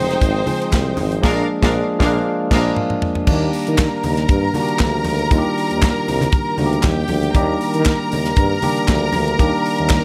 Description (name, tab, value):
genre	disco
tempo	118 BPM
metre	4/4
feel	straight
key	Eb major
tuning	A4 = 441 Hz
part	clear studio string section	second line	0.0-10.0 s	D4 to Bb5	-25 LUFS	equal	none
part	tine electric piano	accompaniment	0.0-10.0 s	Eb3 to F5	-23 LUFS	equal	none
part	warm tuba	bass	0.0-10.0 s	F1 to Eb3	-23 LUFS	equal	none
part	tight funk drum kit	drums	0.1-10.0 s	crash cymbal, handclaps, hi-hat, kick drum, snare drum, toms	-22 LUFS	equal	none
part	congas	percussion	0.5-10.0 s	none	-30 LUFS	equal	none
room	light reverb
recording	none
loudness	-18 LUFS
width	mono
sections	0.0-3.3 A section; 3.3-10.0 B section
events	band accent 1.2-3.3; drum fill 2.3-3.3; tine electric piano fill 2.3-3.3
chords	0.0 Ab6; 1.2 Bb7; 3.3 Ebmaj7